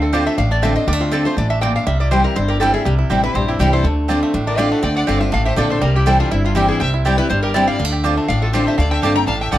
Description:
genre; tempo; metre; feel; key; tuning
bluegrass; 243 BPM; 4/4; swing 54% on 8ths; D minor; A4 = 441 Hz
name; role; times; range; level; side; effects
bluegrass banjo; melody; 0.0-9.6 s; G3 to G4; -26 LUFS; right 4 dB; plate reverb
lap resonator guitar; melody; 0.0-9.6 s; E4 to Bb5; -22 LUFS; left 1 dB; plate reverb
picked steel-string acoustic guitar; accompaniment; 0.0-9.6 s; G2 to F4; -20 LUFS; left 2 dB; none
upright bass; bass; 0.0-9.6 s; G1 to D2; -19 LUFS; equal; none
mandolin; stabs; 0.1-9.6 s; C4 to A5; -20 LUFS; right 3 dB; none
clear fiddle; second line; 3.3-9.6 s; C4 to G5; -28 LUFS; left 2 dB; none
room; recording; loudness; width
light reverb; dark, warm production; -14 LUFS; side -13 dB against mid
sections
0.0-9.6 A section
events
none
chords
0.0 Dm7; 1.9 C; 3.8 Dm7; 5.8 C; 7.8 Dm7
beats
0.14 0.38 0.63 | 0.88 1.12 1.37 1.62 | 1.87 2.11 2.36 2.61 | 2.86 3.10 3.35 3.60 | 3.84 4.09 4.34 4.59 | 4.83 5.08 5.33 5.57 | 5.82 6.07 6.32 6.56 | 6.81 7.06 7.30 7.55 | 7.80 8.04 8.29 8.54 | 8.79 9.03 9.28 9.53

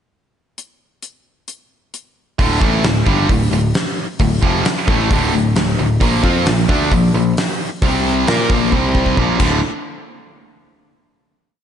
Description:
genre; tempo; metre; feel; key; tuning
hard rock; 133 BPM; 4/4; straight; D minor; A4 = 440 Hz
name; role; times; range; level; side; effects
gated 80s drum kit; drums; 0.6-9.5 s; crash cymbal, hi-hat, kick drum, snare drum; -18 LUFS; equal; none
distorted electric guitar; riff; 2.4-9.6 s; D2 to Bb4; -20 LUFS; left 7 dB; distortion, slapback echo
distorted electric guitar; riff; 2.4-9.6 s; D2 to Bb4; -23 LUFS; right 1 dB; overdrive
tight distorted guitar; riff; 2.4-9.6 s; D2 to Bb4; -21 LUFS; right 9 dB; distortion, slapback echo
picked electric bass; bass; 2.4-9.6 s; D1 to Bb2; -20 LUFS; equal; none
room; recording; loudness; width
moderate lush hall reverb, RT60 2.1 s; big arena sound, nothing above 10.7 kHz; -13 LUFS; side -9 dB against mid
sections
0.6-2.4 pickup bar; 2.4-9.6 riff; 9.6-11.4 final hit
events
drum fill 8.7-9.6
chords
0.6 N.C.; 2.4 Dm; 6.0 Bb5; 7.8 C5; 8.3 Bb5; 8.7 C5; 9.2 Bb5; 9.4 D5; 9.6 N.C.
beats
| 0.58 1.03 1.48 1.93 | 2.38 2.84 3.29 3.74 | 4.20 4.65 5.10 5.56 | 6.01 6.46 6.92 7.37 | 7.82 8.27 8.73 9.18

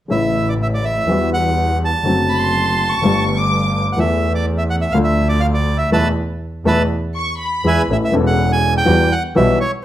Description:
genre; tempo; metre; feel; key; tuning
tango; 123 BPM; 4/4; rubato; A major; A4 = 440 Hz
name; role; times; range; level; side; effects
bandoneon; melody; 0.1-9.7 s; B4 to A5; -19 LUFS; right 2 dB; plate reverb
warm baby grand piano; accompaniment; 0.1-9.6 s; E1 to A4; -18 LUFS; left 2 dB; none
clear double bass; bass; 0.1-9.6 s; E1 to E2; -20 LUFS; right 1 dB; none
warm chamber violin section; second line; 2.3-3.8, 7.2-7.9 s; B5 to D6; -21 LUFS; left 1 dB; none
room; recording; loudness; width
light reverb; none; -14 LUFS; side -12 dB against mid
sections
0.1-7.9 A section; 7.9-9.8 B section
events
band accent 5.9-7.9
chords
0.1 Aadd9; 1.1 Emadd9; 2.1 D7/F#; 3.0 Gadd9; 4.0 Esus4; 5.0 Dm; 5.9 Esus4; 6.9 E; 7.9 Aadd9; 8.9 Emadd9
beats
| 0.11 0.60 1.09 1.58 | 2.06 2.55 3.03 3.51 | 3.99 4.47 4.95 5.43 | 5.92 6.41 6.90 7.40 | 7.89 8.38 8.87 9.36

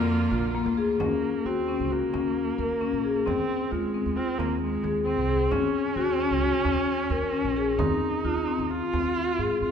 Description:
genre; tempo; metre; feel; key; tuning
contemporary instrumental, chamber music in an uneven meter; 132 BPM; 5/4; straight; Eb dorian; A4 = 440 Hz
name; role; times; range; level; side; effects
warm viola; second line; 0.0-9.7 s; Ab3 to F4; -30 LUFS; right 4 dB; none
clear studio string section; sustained chords; 0.0-1.0 s; D3 to F4; -35 LUFS; right 1 dB; none
marimba with medium hard mallets; arpeggios; 0.0-9.7 s; Bb3 to Bb4; -26 LUFS; left 4 dB; none
upright bass; bass; 0.0-9.7 s; Bb1 to Ab2; -32 LUFS; right 3 dB; none
frame drum; percussion; 0.5-9.3 s; none; -37 LUFS; right 4 dB; none
room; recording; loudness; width
wet recital hall reverb, RT60 1.5 s; minimal, uncompressed stereo recording; -24 LUFS; side -7 dB against mid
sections
0.0-1.0 A section; 1.0-9.7 B section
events
none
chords
0.0 Bb; 1.0 Ebm7; 3.3 Fm7/Eb; 5.5 Ebm7; 7.8 Fm7/Eb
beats
0.09 0.55 | 1.01 1.47 1.92 2.37 2.82 | 3.27 3.72 4.17 4.62 5.07 | 5.51 5.96 6.42 6.87 7.33 | 7.79 8.24 8.70 9.16 9.62

